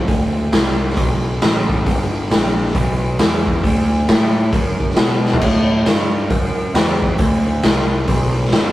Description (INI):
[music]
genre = blues rock power trio and southern rock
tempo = 135 BPM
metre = 4/4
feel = swing 62% on 8ths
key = unclear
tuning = A4 = 443 Hz
[part]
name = fuzz picked electric bass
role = bass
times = 0.0-8.7 s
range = G1 to B2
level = -18 LUFS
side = equal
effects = overdrive
[part]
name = raw garage drum kit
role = drums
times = 0.1-8.7 s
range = crash cymbal, hi-hat, kick drum, snare drum, toms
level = -16 LUFS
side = equal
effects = none
[sound]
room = light reverb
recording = rough rehearsal-room recording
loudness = -14 LUFS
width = side -15 dB against mid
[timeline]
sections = 0.0-8.7 A section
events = drum fill 5.2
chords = none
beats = | 0.10 0.54 0.98 1.43 | 1.87 2.32 2.76 3.21 | 3.65 4.09 4.54 4.98 | 5.42 5.87 6.31 6.76 | 7.20 7.64 8.09 8.54